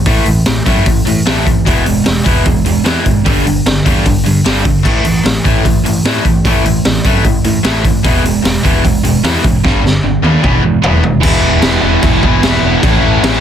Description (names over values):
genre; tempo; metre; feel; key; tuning
punk rock; 150 BPM; 4/4; straight; unclear; A4 = 440 Hz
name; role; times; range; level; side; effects
cranked stack guitar; riff; 0.0-13.4 s; E2 to A3; -16 LUFS; left 12 dB; overdrive
distorted electric guitar; riff; 0.0-13.4 s; G2 to E4; -16 LUFS; right 13 dB; distortion
growling picked electric bass; bass; 0.1-13.4 s; E1 to A2; -18 LUFS; equal; overdrive
raw garage drum kit; drums; 0.1-13.3 s; crash cymbal, hi-hat, kick drum, snare drum, toms; -13 LUFS; equal; none
distorted electric guitar; riff; 11.2-13.4 s; A2 to E4; -16 LUFS; right 1 dB; overdrive
room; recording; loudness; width
little or no reverb; dense, heavily limited modern master; -9 LUFS; side -9 dB against mid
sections
0.0-11.2 A section; 11.2-13.4 B section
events
drum fill 9.6-11.2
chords
0.0 A5; 1.7 E; 3.3 G5; 4.9 A5; 8.0 E; 9.6 G5; 10.4 E; 12.8 A